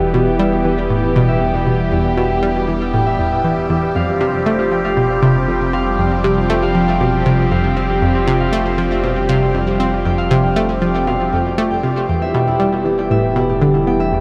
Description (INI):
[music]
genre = ambient, sequencer-driven space music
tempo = 118 BPM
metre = 4/4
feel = straight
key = unclear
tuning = A4 = 440 Hz
[part]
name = phased analog pad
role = sustained chords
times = 0.0-14.2 s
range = E3 to G4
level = -21 LUFS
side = equal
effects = phaser, chorus
[part]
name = concert harp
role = arpeggios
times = 0.0-14.2 s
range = E4 to E6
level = -24 LUFS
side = equal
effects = low-pass filter, tape echo
[part]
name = round analog bass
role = bass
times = 0.0-14.2 s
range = E1 to F1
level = -27 LUFS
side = equal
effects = none
[part]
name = wind-like tuned noise texture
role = texture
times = 2.3-14.2 s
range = A3 to D5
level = -38 LUFS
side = equal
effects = none
[part]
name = analog pluck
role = riff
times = 0.1-14.2 s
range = E2 to C4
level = -20 LUFS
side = equal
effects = chorus, tape echo
[sound]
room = wet huge ambient reverb, RT60 7.6 s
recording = none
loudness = -16 LUFS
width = mono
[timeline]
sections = 0.0-14.2 A section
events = none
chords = 0.0 Em; 4.0 Fsus2; 12.1 Em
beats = 0.40 0.90 1.41 | 1.92 2.43 2.94 3.45 | 3.96 4.46 4.97 5.48 | 5.99 6.50 7.01 7.51 | 8.02 8.53 9.04 9.55 | 10.06 10.56 11.07 11.58 | 12.09 12.60 13.11 13.62 | 14.12